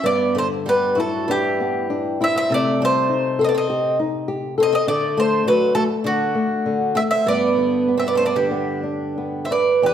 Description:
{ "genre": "fado-style ballad", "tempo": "88-103 BPM", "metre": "4/4", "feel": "rubato", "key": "G major", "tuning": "A4 = 440 Hz", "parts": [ { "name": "bowl-back mandolin", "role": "melody", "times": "0.0-9.9 s", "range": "F#4 to E5", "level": "-21 LUFS", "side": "equal", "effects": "none" }, { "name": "picked twelve-string acoustic guitar", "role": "second line", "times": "0.0-9.9 s", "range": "D3 to C5", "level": "-22 LUFS", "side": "right 4 dB", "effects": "none" }, { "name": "nylon-string guitar", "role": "accompaniment", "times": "0.0-9.9 s", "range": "E2 to A4", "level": "-22 LUFS", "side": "left 4 dB", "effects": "none" } ], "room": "wet recital hall reverb, RT60 1.4 s", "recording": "none", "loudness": "-17 LUFS", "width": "side -9 dB against mid", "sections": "0.0-9.8 A section", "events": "none", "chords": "0.0 G6; 2.5 Cm6; 4.9 D; 7.3 G" }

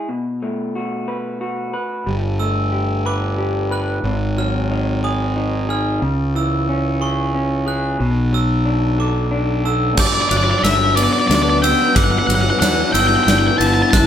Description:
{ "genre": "post-rock", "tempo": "61 BPM (dotted quarters)", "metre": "6/8", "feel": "straight", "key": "G lydian", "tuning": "A4 = 436 Hz", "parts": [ { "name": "electric guitar through a small old amp", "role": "arpeggios", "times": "0.0-14.1 s", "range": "F#2 to B4", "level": "-22 LUFS", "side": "left 1 dB", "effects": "none" }, { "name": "fuzz fingered electric bass", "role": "bass", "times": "2.1-14.1 s", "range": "F#1 to E2", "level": "-19 LUFS", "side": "equal", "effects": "overdrive" }, { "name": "glockenspiel with brass mallets", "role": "arpeggios", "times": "2.4-14.1 s", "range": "C#6 to G6", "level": "-25 LUFS", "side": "right 1 dB", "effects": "none" }, { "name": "octave-fuzz lead guitar", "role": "melody", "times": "10.0-14.1 s", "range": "D5 to A5", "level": "-17 LUFS", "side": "equal", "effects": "distortion" }, { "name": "granular cloud pad", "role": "sustained chords", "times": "11.3-14.1 s", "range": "C#3 to B4", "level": "-23 LUFS", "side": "left 1 dB", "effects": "built-in reverb" }, { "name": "huge arena drum kit", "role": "drums", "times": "10.0-14.1 s", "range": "crash cymbal, kick drum, ride cymbal, snare drum", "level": "-19 LUFS", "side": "equal", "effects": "none" } ], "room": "wet large studio reverb, RT60 0.9 s", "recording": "band playing live in one room", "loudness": "-15 LUFS", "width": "side -9 dB against mid", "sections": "0.0-10.0 A section; 10.0-14.1 B section", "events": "build-up 10.0-14.1; drum fill 10.0-14.1", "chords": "0.1 B5; 2.1 Gadd9; 4.0 Ab5; 6.0 C#m; 8.0 Bm7; 10.0 Gmaj7" }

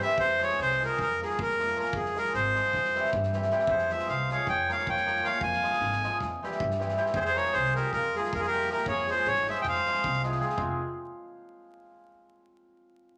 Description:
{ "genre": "balkan folk, Balkan wedding band", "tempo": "312 BPM (eighths)", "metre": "9/8", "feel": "straight", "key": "F harmonic minor", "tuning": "A4 = 440 Hz", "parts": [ { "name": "accordion", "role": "melody", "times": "0.0-10.2 s", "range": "Ab4 to Ab5", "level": "-29 LUFS", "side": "equal", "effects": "none" }, { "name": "cimbalom", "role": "accompaniment", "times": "0.0-10.8 s", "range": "E3 to Bb4", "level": "-34 LUFS", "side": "equal", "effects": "none" }, { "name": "loose indie drum kit", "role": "percussion", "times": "0.0-10.8 s", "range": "kick drum, snare drum", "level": "-43 LUFS", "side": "equal", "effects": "none" }, { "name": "upright bass", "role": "bass", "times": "0.2-10.8 s", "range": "F1 to G2", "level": "-38 LUFS", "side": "equal", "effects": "none" }, { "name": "mellow trumpet", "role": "second line", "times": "3.7-10.2 s", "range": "F4 to F5", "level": "-36 LUFS", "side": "equal", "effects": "none" } ], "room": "moderate large studio reverb, RT60 0.8 s", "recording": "vinyl crackle", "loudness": "-28 LUFS", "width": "mono", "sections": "0.0-10.6 A section; 10.6-12.3 B section", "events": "none", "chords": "0.2 Fm; 1.0 Bbm/F; 1.9 Db/F; 2.7 C/F; 3.7 Fm; 4.5 Bbm/F; 5.4 Db/F; 6.2 C/F; 7.1 Fm; 7.9 Bbm/F; 8.9 Db/F; 9.6 Fm" }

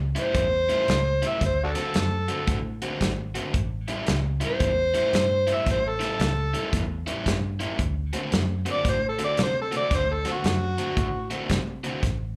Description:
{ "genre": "electric blues shuffle", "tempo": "113 BPM", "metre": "4/4", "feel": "swing 64% on 8ths", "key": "unclear", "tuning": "A4 = 438 Hz", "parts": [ { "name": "vintage muted fingered electric bass", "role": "bass", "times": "0.0-12.4 s", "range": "G#1 to C3", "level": "-31 LUFS", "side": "equal", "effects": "none" }, { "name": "overdriven harmonica", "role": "melody", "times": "0.2-11.3 s", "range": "D4 to E5", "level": "-28 LUFS", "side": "equal", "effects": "slapback echo, plate reverb" }, { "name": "overdriven semi-hollow guitar", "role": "riff", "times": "0.2-12.0 s", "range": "A2 to F#4", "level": "-33 LUFS", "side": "equal", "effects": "slapback echo" }, { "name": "natural country drum kit", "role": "drums", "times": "0.2-12.2 s", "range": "hi-hat, kick drum, snare drum", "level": "-30 LUFS", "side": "equal", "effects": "none" } ], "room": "light reverb", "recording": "live gig heard through the venue's PA, club ambience", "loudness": "-25 LUFS", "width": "mono", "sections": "0.0-12.4 A section", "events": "harmonica solo 0.0-12.4", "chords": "0.0 A7; 1.4 D7; 3.5 A7; 7.8 D7" }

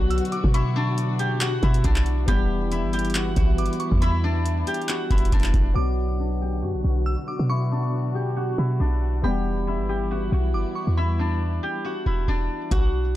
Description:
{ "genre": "hip hop, trap", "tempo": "138 BPM", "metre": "4/4", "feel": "half-time", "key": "B minor", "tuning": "A4 = 444 Hz", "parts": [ { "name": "steel-string zither", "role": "melody", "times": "0.0-13.2 s", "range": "D4 to G5", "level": "-29 LUFS", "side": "left 1 dB", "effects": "low-pass filter" }, { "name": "Celtic harp", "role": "accompaniment", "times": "0.0-12.8 s", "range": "B2 to D4", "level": "-33 LUFS", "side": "left 6 dB", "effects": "low-pass filter" }, { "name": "dark studio string section", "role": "sustained chords", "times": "0.0-12.7 s", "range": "D3 to F#4", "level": "-32 LUFS", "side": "equal", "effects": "low-pass filter" }, { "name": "warm 808-style bass", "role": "bass", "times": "0.0-13.2 s", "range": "E1 to B2", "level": "-24 LUFS", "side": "equal", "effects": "none" }, { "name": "glassy synth bell", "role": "second line", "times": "0.1-11.8 s", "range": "B5 to E6", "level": "-35 LUFS", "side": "right 1 dB", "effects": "chorus, tremolo, ping-pong delay" }, { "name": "booming analog drum machine", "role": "drums", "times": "0.1-5.7, 12.7-12.9 s", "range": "handclaps, hi-hat, kick drum", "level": "-22 LUFS", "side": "equal", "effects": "overdrive" } ], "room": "small room reverb", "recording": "dark, warm production", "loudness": "-21 LUFS", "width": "side -14 dB against mid", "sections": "0.0-5.8 A section; 5.8-12.7 B section", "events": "filter sweep 5.8-12.7", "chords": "0.0 Bm; 2.3 Em; 5.8 Bm; 9.2 Em" }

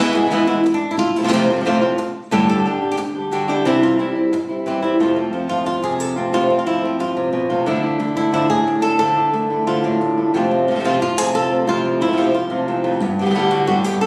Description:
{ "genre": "flamenco", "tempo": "180 BPM", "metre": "4/4", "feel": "straight", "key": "unclear", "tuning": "A4 = 440 Hz", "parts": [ { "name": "flamenco guitar", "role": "melody", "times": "0.0-14.1 s", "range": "E2 to A4", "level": "-20 LUFS", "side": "equal", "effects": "none" }, { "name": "flamenco guitar", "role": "stabs", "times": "0.0-14.1 s", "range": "E2 to G4", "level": "-23 LUFS", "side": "equal", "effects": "none" } ], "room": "moderate studio reverb, RT60 0.5 s", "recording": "recorded on a phone in the room, studio reverb, lossy compression artefacts", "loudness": "-18 LUFS", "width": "mono", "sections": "0.0-5.0 A section; 5.0-14.1 B section", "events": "none", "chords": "0.0 E; 1.0 F; 2.3 Gsus2; 3.7 C; 5.0 F; 7.7 Dmadd9; 10.3 F; 13.0 Gadd9" }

